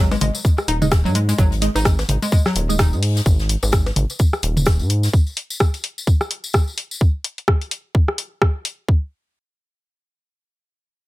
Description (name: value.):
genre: minimal techno.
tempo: 128 BPM.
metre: 4/4.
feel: swing 58% on 16ths.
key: unclear.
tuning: A4 = 440 Hz.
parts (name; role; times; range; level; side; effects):
hollow square pluck; riff; 0.0-2.9 s; F#3 to D#4; -24 LUFS; left 1 dB; chorus, sidechain pumping, ping-pong delay.
rubbery square bass; bass; 0.0-5.1 s; D#1 to G#2; -20 LUFS; equal; sidechain pumping.
garage drum kit; drums; 0.1-8.8 s; hi-hat, rim click; -21 LUFS; left 1 dB; none.
jazz brush drum kit; drums; 0.1-5.1 s; hi-hat, shaker, snare drum; -34 LUFS; left 3 dB; high-pass filter on hats, high-pass filter on snare, high-pass filter on perc, high-pass filter on room.
electronic percussion blips and toms; percussion; 0.1-4.6 s; none; -23 LUFS; equal; overdrive, dub echo.
tambourine; percussion; 0.1-7.0 s; none; -30 LUFS; left 3 dB; none.
electronic kick drum; drums; 0.4-9.0 s; none; -16 LUFS; equal; none.
wavetable chord stab; stabs; 0.8-2.7 s; G#3 to D#5; -27 LUFS; right 3 dB; dub echo.
room: little or no reverb.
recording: none.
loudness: -16 LUFS.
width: side -18 dB against mid.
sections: 0.0-8.9 A section; 8.9-11.1 B section.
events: drop 0.0-8.9.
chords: 0.0 G#5; 8.9 N.C..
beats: 0.45 0.92 | 1.39 1.85 2.32 2.79 | 3.26 3.73 4.20 4.67 | 5.13 5.60 6.07 6.54 | 7.01 7.48 7.95 8.42 | 8.88.